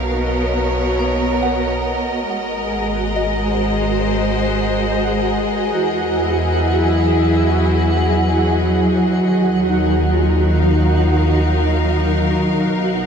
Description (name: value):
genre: ambient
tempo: 69 BPM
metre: 4/4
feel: straight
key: unclear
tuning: A4 = 440 Hz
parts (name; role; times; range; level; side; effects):
- clear symphonic string section; sustained chords; 0.0-13.1 s; B2 to F5; -18 LUFS; equal; none
- round analog bass; bass; 0.0-13.1 s; Ab1 to E2; -20 LUFS; equal; none
- soft synth bell; arpeggios; 1.0-13.1 s; Eb4 to A#5; -28 LUFS; left 1 dB; chorus, phaser, diffuse ambient delay
- twinkling granular texture; texture; 2.8-13.1 s; Gb4; -22 LUFS; right 2 dB; built-in reverb
room: wet huge ambient reverb, RT60 8.0 s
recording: dark, warm production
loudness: -15 LUFS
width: side -6 dB against mid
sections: 0.0-13.1 A section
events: fade-out on synth bell 0.0-13.1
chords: 0.0 Bmaj7; 2.3 Abadd9; 5.8 Emaj7; 9.3 Ebmadd9